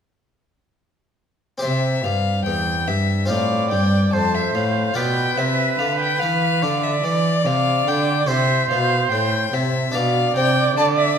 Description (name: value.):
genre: classical, baroque-style sonata movement with continuo.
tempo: 72 BPM.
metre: 4/4.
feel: straight.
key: C major.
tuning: A4 = 440 Hz.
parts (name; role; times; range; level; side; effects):
rich violin; melody; 1.6-11.2 s; D5 to A5; -22 LUFS; left 6 dB; none.
harpsichord; accompaniment; 1.6-11.2 s; E2 to D5; -25 LUFS; left 1 dB; none.
rich cello; bass; 1.6-11.2 s; E2 to E3; -22 LUFS; right 1 dB; none.
clear oboe; second line; 3.3-11.2 s; B4 to D5; -22 LUFS; right 5 dB; none.
room: wet recital hall reverb, RT60 1.5 s.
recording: none.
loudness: -17 LUFS.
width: side -7 dB against mid.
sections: 1.6-11.2 A section.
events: none.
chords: 1.6 C; 3.3 F; 5.0 Dm13/B; 8.3 C; 10.0 Dm13/B.